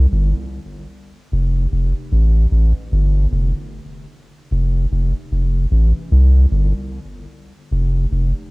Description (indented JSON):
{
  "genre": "reggae",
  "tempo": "75 BPM",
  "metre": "4/4",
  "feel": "swing 62% on 16ths",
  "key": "unclear",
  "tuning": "A4 = 440 Hz",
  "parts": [
    { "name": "soft dub sub bass", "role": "solo", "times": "0.0-8.3 s", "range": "F1 to C2", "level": "-15 LUFS", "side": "equal", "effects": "cassette tape" }
  ],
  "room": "little or no reverb",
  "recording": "home recording on cassette",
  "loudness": "-15 LUFS",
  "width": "side -27 dB against mid",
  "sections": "0.0-8.5 A section",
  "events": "none",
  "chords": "none"
}